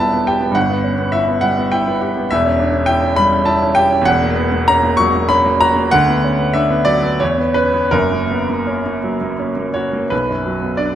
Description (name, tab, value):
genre	classical, romantic character piece for solo piano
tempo	78-108 BPM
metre	3/4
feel	rubato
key	B minor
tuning	A4 = 442 Hz
part	clear grand piano	solo	0.0-10.9 s	E1 to C#6	-13 LUFS	equal	none
room	moderate recital hall reverb, RT60 1.5 s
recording	none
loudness	-13 LUFS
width	side -10 dB against mid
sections	0.0-10.1 A section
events	none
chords	0.0 Em7; 0.6 Em/G; 2.3 C#dim/E; 4.1 F#7/E; 5.9 Bm/D; 7.2 C#m7/E; 7.9 F#; 10.1 Bm